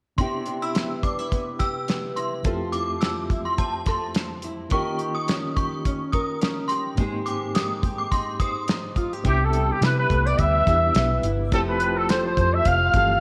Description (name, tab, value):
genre	indie pop, bedroom pop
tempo	106 BPM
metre	4/4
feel	swing 55% on 16ths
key	C major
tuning	A4 = 441 Hz
part	synth chime	second line	0.2-8.5 s	A5 to E6	-32 LUFS	equal	ensemble chorus, tape echo
part	bright reed electric piano	accompaniment	0.2-13.2 s	F2 to G4	-35 LUFS	equal	fast tremolo
part	nylon-string guitar	accompaniment	0.2-13.2 s	C3 to C5	-32 LUFS	equal	lush chorus, warbly pitch drift
part	cloth-damped thuddy drum kit	drums	0.2-13.1 s	hi-hat, kick drum, snare drum	-28 LUFS	equal	none
part	vintage muted fingered electric bass	bass	9.2-13.2 s	F1 to C3	-26 LUFS	equal	none
part	warm trumpet	melody	9.3-13.2 s	G4 to F5	-24 LUFS	equal	ensemble chorus, tape echo
room	moderate echo chamber reverb, RT60 1.4 s, small room ambience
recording	none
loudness	-23 LUFS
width	mono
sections	0.2-9.3 A section; 9.3-13.2 B section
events	none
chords	0.2 Cmaj7; 2.5 Fmaj7; 4.7 Eb7; 7.0 Abmaj7; 9.3 Cmaj7; 11.5 Fmaj7